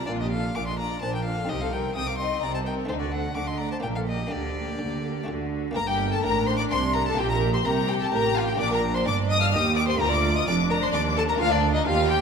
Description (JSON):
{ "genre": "classical, baroque-style concerto movement with solo episodes", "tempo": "128 BPM", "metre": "3/4", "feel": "straight", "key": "G minor", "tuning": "A4 = 440 Hz", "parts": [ { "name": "rich chamber violin section", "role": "melody", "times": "0.0-12.2 s", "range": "D4 to F6", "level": "-31 LUFS", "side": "left 6 dB", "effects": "none" }, { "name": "rich violin", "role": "melody", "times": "0.0-12.2 s", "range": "C5 to F6", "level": "-30 LUFS", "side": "left 2 dB", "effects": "none" }, { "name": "rich chamber violin section", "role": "second line", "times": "0.0-12.2 s", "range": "D4 to G5", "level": "-29 LUFS", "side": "left 3 dB", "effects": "none" }, { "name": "buff-stop harpsichord", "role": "accompaniment", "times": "0.0-12.2 s", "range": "D2 to A4", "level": "-37 LUFS", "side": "equal", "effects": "none" }, { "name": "warm chamber viola section", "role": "accompaniment", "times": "0.0-12.2 s", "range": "A3 to G4", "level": "-32 LUFS", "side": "right 2 dB", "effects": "none" }, { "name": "clear chamber cello section", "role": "bass", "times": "0.0-12.2 s", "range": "D2 to D3", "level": "-30 LUFS", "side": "right 3 dB", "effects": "none" }, { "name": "warm chamber double bass section", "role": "bass", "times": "0.0-12.2 s", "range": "F1 to Eb2", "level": "-30 LUFS", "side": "right 3 dB", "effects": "none" } ], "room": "wet concert hall reverb, RT60 1.9 s", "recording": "none", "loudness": "-22 LUFS", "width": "side -6 dB against mid", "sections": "0.0-5.8 A section; 5.8-12.2 B section", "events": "none", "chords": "0.1 Bb; 1.5 Cm; 2.9 D5; 3.8 Gm/Bb; 4.3 Gm/D; 5.3 D; 5.8 Gm; 7.2 Gm/Bb; 8.6 Bb; 11.4 Dm" }